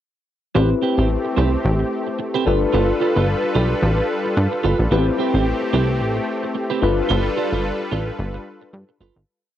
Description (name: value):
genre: funk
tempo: 110 BPM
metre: 4/4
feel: swing 56% on 16ths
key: unclear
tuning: A4 = 440 Hz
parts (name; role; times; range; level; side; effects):
- tine electric piano; accompaniment; 0.5-9.0 s; B3 to B4; -24 LUFS; left 8 dB; cassette tape
- lush unison pad; sustained chords; 0.6-9.3 s; G3 to B4; -24 LUFS; equal; chorus, cassette tape
- clean electric guitar; riff; 0.6-9.2 s; C4 to D5; -23 LUFS; right 8 dB; wide subtle chorus, cassette tape
- plucky analog bass; bass; 0.6-9.2 s; G1 to G2; -19 LUFS; equal; none
room: light reverb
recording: home recording on cassette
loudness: -17 LUFS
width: side -11 dB against mid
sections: 0.6-9.3 verse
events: fade-out 7.1-9.3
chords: 0.6 Am9; 2.5 G9; 4.9 Am9; 6.8 G9